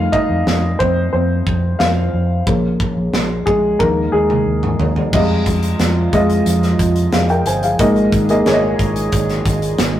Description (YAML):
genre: piano-driven pop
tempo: 90 BPM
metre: 4/4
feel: straight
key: unclear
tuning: A4 = 439 Hz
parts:
  - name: warm upright piano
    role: accompaniment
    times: 0.0-10.0 s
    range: Ab2 to Ab5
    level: -17 LUFS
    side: left 1 dB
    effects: none
  - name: vintage muted fingered electric bass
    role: bass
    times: 0.0-10.0 s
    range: G1 to F2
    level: -19 LUFS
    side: equal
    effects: none
  - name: modern studio drum kit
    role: drums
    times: 0.1-9.9 s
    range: crash cymbal, hi-hat, kick drum, snare drum, toms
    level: -20 LUFS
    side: right 1 dB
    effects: none
  - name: chorused pulse-width pad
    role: sustained chords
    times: 5.1-10.0 s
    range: Bb2 to Eb5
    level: -22 LUFS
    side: right 2 dB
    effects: none
room: wet studio reverb, RT60 0.6 s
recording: rough rehearsal-room recording, warm saturation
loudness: -13 LUFS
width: side -12 dB against mid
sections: 0.0-5.1 A section; 5.1-10.0 B section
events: upright piano solo 0.0-5.1; drum fill 3.8-5.1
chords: 0.0 F7; 2.5 Bbm; 3.8 Ebsus4; 5.1 Fm7; 7.8 Absus2